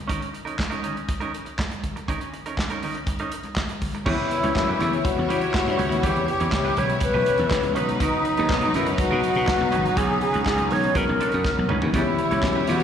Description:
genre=disco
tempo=122 BPM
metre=4/4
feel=straight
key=unclear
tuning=A4 = 438 Hz
part: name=semi-hollow electric guitar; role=accompaniment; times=0.1-12.8 s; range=C#4 to C#5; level=-30 LUFS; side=right 5 dB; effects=slapback echo
part: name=warm soul drum kit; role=drums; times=0.1-12.8 s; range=crash cymbal, handclaps, hi-hat, kick drum, snare drum, toms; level=-28 LUFS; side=right 1 dB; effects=none
part: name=congas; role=percussion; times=0.1-12.8 s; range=none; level=-35 LUFS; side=left 4 dB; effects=slapback echo
part: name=bright tonewheel organ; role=sustained chords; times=4.0-12.8 s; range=B2 to E4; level=-30 LUFS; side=left 1 dB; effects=wide subtle chorus
part: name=bright wooden-headed alto flute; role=melody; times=4.1-12.8 s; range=D#4 to C#5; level=-24 LUFS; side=left 2 dB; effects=slapback echo
part: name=clear studio string section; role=second line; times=4.1-12.8 s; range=F#3 to C#5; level=-28 LUFS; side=left 2 dB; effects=slapback echo
part: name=slap bass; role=bass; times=4.1-12.8 s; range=G#1 to E3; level=-26 LUFS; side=equal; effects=none
part: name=mellow tine electric piano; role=accompaniment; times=11.9-12.8 s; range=E3 to G4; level=-27 LUFS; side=left 4 dB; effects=slapback echo
room=light reverb, small room ambience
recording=live gig heard through the venue's PA, recital hall reverb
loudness=-21 LUFS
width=side -8 dB against mid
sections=0.0-4.1 A section; 4.1-12.8 B section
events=drum fill 11.4-11.9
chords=0.0 A#madd11/C#; 4.1 Em6; 7.8 Bmaj9; 11.9 Em6

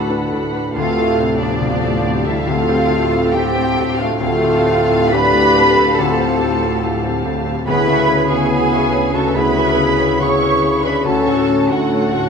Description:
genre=cinematic, emotional film score for orchestra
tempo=70 BPM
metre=4/4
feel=rubato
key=unclear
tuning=A4 = 440 Hz
part: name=muted studio violin section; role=melody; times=0.0-12.3 s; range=D5 to C#6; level=-24 LUFS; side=left 1 dB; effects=none
part: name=mellow clarinet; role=second line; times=0.0-12.3 s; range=B3 to G#4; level=-22 LUFS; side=left 2 dB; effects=none
part: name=mellow hollow small flute group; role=second line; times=0.0-12.3 s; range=D5 to C#6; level=-23 LUFS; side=right 5 dB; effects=none
part: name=muted studio violin section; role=second line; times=0.0-12.3 s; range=C#5 to C#6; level=-27 LUFS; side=equal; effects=none
part: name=muted studio viola section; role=accompaniment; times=0.0-12.3 s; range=A3 to B4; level=-25 LUFS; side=left 2 dB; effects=none
part: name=warm grand piano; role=accompaniment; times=0.0-12.3 s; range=D2 to C#5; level=-22 LUFS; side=left 1 dB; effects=none
part: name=warm French horn section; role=sustained chords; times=0.0-12.3 s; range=F3 to E4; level=-20 LUFS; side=left 2 dB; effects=none
part: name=concert harp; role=arpeggios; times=0.0-12.3 s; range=C3 to C#5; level=-27 LUFS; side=left 6 dB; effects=none
part: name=muted studio cello section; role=bass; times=0.0-12.3 s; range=D4 to C#5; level=-22 LUFS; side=right 4 dB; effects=none
part: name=muted studio double bass section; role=bass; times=0.0-12.3 s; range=D2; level=-26 LUFS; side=right 4 dB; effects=none
part: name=timpani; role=percussion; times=7.7-8.9 s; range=D3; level=-32 LUFS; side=right 3 dB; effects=none
room=wet scoring stage reverb, RT60 1.9 s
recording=none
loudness=-13 LUFS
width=side -6 dB against mid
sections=0.0-12.3 A section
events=none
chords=0.0 D6; 0.8 Fadd9/D; 7.7 C#m7/D; 11.1 F#m/D

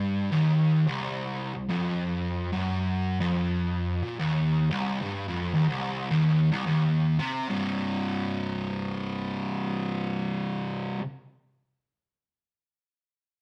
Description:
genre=metal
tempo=72 BPM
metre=4/4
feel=swing 63% on 8ths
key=C minor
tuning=A4 = 442 Hz
part: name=fuzz guitar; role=solo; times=0.0-11.0 s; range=C2 to C3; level=-28 LUFS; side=equal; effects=distortion
room=moderate stone room reverb, RT60 0.9 s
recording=rough rehearsal-room recording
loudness=-28 LUFS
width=mono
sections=0.0-7.5 A section; 7.5-10.8 B section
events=none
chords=0.0 Cm; 7.5 C5

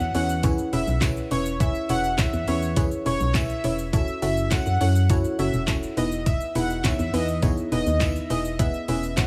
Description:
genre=dance-pop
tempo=103 BPM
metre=4/4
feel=straight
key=C# minor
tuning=A4 = 440 Hz
part: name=soft supersaw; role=melody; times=0.0-9.3 s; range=C#5 to F#5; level=-31 LUFS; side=equal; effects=sidechain pumping, dub echo
part: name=soft round pluck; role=accompaniment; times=0.0-9.3 s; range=B3 to E5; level=-30 LUFS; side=equal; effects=chorus, sidechain pumping
part: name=organ-like FM bass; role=bass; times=0.0-9.2 s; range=E1 to F#2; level=-28 LUFS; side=equal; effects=sidechain pumping
part: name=smooth R&B drum kit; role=drums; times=0.0-9.3 s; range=handclaps, hi-hat, kick drum, shaker, snare drum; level=-28 LUFS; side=equal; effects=none
part: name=tambourine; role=percussion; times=0.1-9.3 s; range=none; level=-47 LUFS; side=equal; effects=none
room=digital ambience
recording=small room ambience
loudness=-24 LUFS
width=mono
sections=0.0-9.3 A section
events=none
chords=0.0 C#m7/E; 3.9 F#m7; 6.0 Emaj7; 8.6 C#m7/E

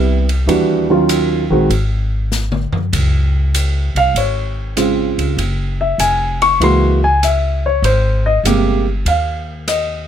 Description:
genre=jazz piano trio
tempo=98 BPM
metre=4/4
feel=swing 68% on 8ths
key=Ab major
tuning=A4 = 440 Hz
part: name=warm grand piano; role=melody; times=0.0-10.1 s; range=C3 to Db6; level=-14 LUFS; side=right 1 dB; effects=none
part: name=upright bass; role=bass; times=0.0-10.1 s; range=F1 to Eb2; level=-17 LUFS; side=equal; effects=none
part: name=open jazz drum kit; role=drums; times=0.3-9.9 s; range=hi-hat, kick drum, ride cymbal, rim click, snare drum, toms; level=-23 LUFS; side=equal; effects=none
room=little or no reverb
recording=close, detailed microphones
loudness=-13 LUFS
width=side -9 dB against mid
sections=0.0-10.1 A section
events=drum fill 2.3-2.9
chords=0.5 Ebm9; 1.7 N.C.; 2.9 Dbmaj7; 5.4 Gb7sus2; 7.8 Abmaj7

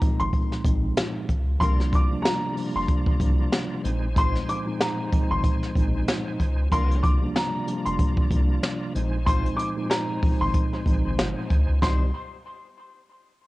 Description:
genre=hip hop, boom-bap hip-hop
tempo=94 BPM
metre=4/4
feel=swing 58% on 16ths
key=C minor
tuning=A4 = 439 Hz
part: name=warm upright piano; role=melody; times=0.0-12.1 s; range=Bb5 to D6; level=-30 LUFS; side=left 1 dB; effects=high-pass filter, low-pass filter, cassette tape, tape echo
part: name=mellow tine electric piano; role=accompaniment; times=0.0-12.1 s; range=Bb2 to Eb4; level=-29 LUFS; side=equal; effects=medium stereo tremolo, cassette tape, high-pass filter, low-pass filter
part: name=jazz brush drum kit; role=drums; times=0.0-12.0 s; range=hi-hat, kick drum, snare drum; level=-24 LUFS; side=equal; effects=vintage 12-bit sampler grit, cassette tape
part: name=soft dub sub bass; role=bass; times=0.2-12.1 s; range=F1 to D2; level=-25 LUFS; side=equal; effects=tube saturation
part: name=bright tonewheel organ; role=sustained chords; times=1.6-12.1 s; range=C3 to Bb5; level=-37 LUFS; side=equal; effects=overdrive, chorus vibrato, fast rotary speaker, high-pass filter, low-pass filter, cassette tape
part: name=warm horn section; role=stabs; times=1.6-12.0 s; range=G3 to C5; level=-40 LUFS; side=left 6 dB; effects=high-pass filter, low-pass filter, cassette tape, tape echo
room=studio reverb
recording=home recording on cassette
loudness=-21 LUFS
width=side -19 dB against mid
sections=0.0-11.8 A section; 11.8-13.5 B section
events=none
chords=0.0 Bb9sus4; 1.6 C9sus4; 3.8 Bb9sus4; 6.7 C9sus4; 8.9 Bb9sus4; 11.8 Cm

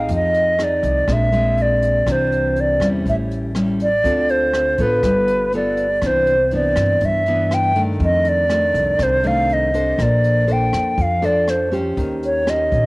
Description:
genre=bossa nova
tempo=121 BPM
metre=4/4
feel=straight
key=unclear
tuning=A4 = 440 Hz
part: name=hollow concert flute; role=melody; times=0.0-12.9 s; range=B4 to G5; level=-17 LUFS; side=equal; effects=none
part: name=nylon-string guitar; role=accompaniment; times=0.0-12.9 s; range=F2 to C5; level=-22 LUFS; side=equal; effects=cassette tape
part: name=upright bass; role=bass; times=0.0-12.9 s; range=G1 to G2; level=-23 LUFS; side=equal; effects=none
part: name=jazz brush drum kit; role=drums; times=0.1-12.8 s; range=hi-hat, kick drum, rim click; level=-29 LUFS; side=equal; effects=cassette tape
room=moderate spring reverb, RT60 2.2 s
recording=home recording on cassette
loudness=-15 LUFS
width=side -23 dB against mid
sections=0.0-6.0 A section; 6.0-12.9 A section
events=none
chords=0.1 Fm7; 1.1 Bb9; 2.1 Cadd9; 3.1 A7; 4.0 Dm7; 5.0 G9; 6.0 Cmaj9; 8.0 F6; 10.0 Bbmaj9; 12.0 Eb13

